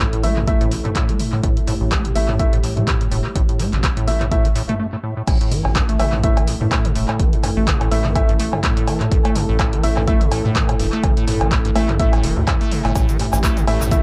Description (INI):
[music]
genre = acid house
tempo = 125 BPM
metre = 4/4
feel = swing 56% on 16ths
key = unclear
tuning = A4 = 440 Hz
[part]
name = dark analog pad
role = sustained chords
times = 0.0-14.0 s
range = A3 to A4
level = -29 LUFS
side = equal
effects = chorus, sidechain pumping
[part]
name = acid bass, square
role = riff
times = 0.0-14.0 s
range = G2 to A3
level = -26 LUFS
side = equal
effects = vintage 12-bit sampler grit, tape echo
[part]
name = round analog bass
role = bass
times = 0.0-14.0 s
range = E1 to A2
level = -24 LUFS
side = equal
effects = sidechain pumping
[part]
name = electronic kick drum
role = drums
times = 0.0-14.0 s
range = none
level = -22 LUFS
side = equal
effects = none
[part]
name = punchy analog drum machine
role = drums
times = 0.0-14.0 s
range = cowbell, crash cymbal, handclaps, hi-hat, toms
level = -26 LUFS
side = equal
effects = tape echo
[part]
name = dark baby grand piano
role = stabs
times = 0.2-14.0 s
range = A3 to E5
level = -28 LUFS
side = equal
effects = tape echo
[part]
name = egg shaker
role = percussion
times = 13.0-14.0 s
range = none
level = -34 LUFS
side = equal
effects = none
[sound]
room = little or no reverb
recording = echo-heavy mix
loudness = -18 LUFS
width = mono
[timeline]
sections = 0.0-5.3 A section; 5.3-14.0 B section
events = break 4.8-5.3; drop 5.3-14.0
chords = 0.0 A5